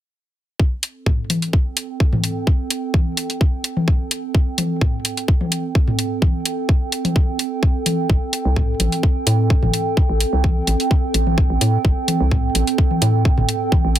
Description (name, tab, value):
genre	minimal techno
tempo	128 BPM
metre	4/4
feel	swing 53% on 16ths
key	A minor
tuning	A4 = 439 Hz
part	electronic kick drum	drums	0.6-13.8 s	none	-16 LUFS	equal	none
part	warbly tape-like pad	texture	1.3-14.0 s	C4 to G5	-24 LUFS	right 5 dB	chorus, built-in reverb, sidechain pumping
part	electronic hi-hat	drums	0.8-14.0 s	none	-21 LUFS	equal	none
part	electronic toms	percussion	1.1-13.8 s	none	-23 LUFS	left 2 dB	none
part	hollow knocking FM bass	bass	8.1-14.0 s	G1 to A2	-18 LUFS	equal	sidechain pumping
room	light reverb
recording	dense, heavily limited modern master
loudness	-16 LUFS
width	side -12 dB against mid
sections	0.6-14.0 A section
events	none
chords	0.6 Am7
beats	| 0.60 1.06 1.53 2.00 | 2.47 2.94 3.41 3.88 | 4.35 4.81 5.28 5.75 | 6.22 6.69 7.16 7.63 | 8.10 8.56 9.03 9.50 | 9.97 10.44 10.91 11.38 | 11.85 12.31 12.78 13.25 | 13.72